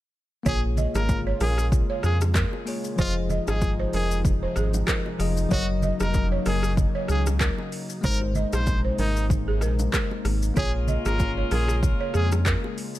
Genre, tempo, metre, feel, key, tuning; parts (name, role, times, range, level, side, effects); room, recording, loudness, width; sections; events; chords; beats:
afrobeats; 95 BPM; 4/4; swing 55% on 16ths; Bb minor; A4 = 441 Hz
bell-like tine electric piano; accompaniment; 0.4-13.0 s; F3 to Eb5; -32 LUFS; left 5 dB
brilliant trumpet; melody; 0.5-12.3 s; Eb4 to C5; -32 LUFS; equal; ping-pong delay
warm analog pad; sustained chords; 0.9-13.0 s; C3 to F4; -35 LUFS; equal; chorus
balafon; riff; 0.5-12.7 s; Ab4 to Eb5; -33 LUFS; right 6 dB; ping-pong delay
round analog bass; bass; 0.5-12.6 s; F1 to F2; -24 LUFS; equal
deep house drum kit; drums; 0.5-13.0 s; handclaps, hi-hat, kick drum, rim click, shaker; -27 LUFS; equal; overdrive
congas and bongos; percussion; 0.5-12.8 s; -34 LUFS; right 3 dB
clear horn section; second line; 10.6-12.7 s; Db4 to Bb4; -35 LUFS; left 2 dB
studio reverb; -22 LUFS; side -15 dB against mid
0.5-13.0 A section
0.5 Bbm7; 3.0 Fm7; 5.5 Gb6; 8.0 Abadd9; 10.6 Bbm7
| 0.46 1.09 1.72 2.35 | 2.99 3.62 4.25 4.88 | 5.51 6.14 6.78 7.41 | 8.04 8.67 9.30 9.93 | 10.57 11.20 11.83 12.46